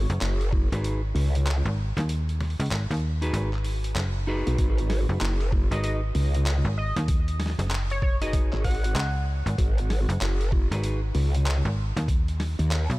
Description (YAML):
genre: glitch hop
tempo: 96 BPM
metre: 4/4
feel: swing 63% on 16ths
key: G# minor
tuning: A4 = 440 Hz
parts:
  - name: growl bass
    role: bass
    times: 0.0-12.9 s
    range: F#1 to D#2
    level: -23 LUFS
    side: equal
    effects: chorus, overdrive
  - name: slap-like FM bass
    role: bass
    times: 0.1-13.0 s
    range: F#1 to D#2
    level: -26 LUFS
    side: equal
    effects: tube saturation
  - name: boom bap sampler-style drum kit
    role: drums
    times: 0.1-13.0 s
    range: handclaps, hi-hat, snare drum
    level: -34 LUFS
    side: equal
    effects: none
  - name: electronic kick drum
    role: drums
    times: 0.5-0.7, 4.6-12.2 s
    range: none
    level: -24 LUFS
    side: equal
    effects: none
  - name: clean electric guitar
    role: stabs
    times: 0.7-11.0 s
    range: D#4 to B4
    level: -36 LUFS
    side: equal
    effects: sidechain pumping, diffuse ambient delay
  - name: sync lead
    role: melody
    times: 5.7-9.3 s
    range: C#5 to F#5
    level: -36 LUFS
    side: equal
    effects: chorus, diffuse ambient delay
room: digital ambience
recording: none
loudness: -23 LUFS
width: side -20 dB against mid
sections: 0.0-13.0 A section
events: kick drops out 2.1-4.6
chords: 0.0 G#m7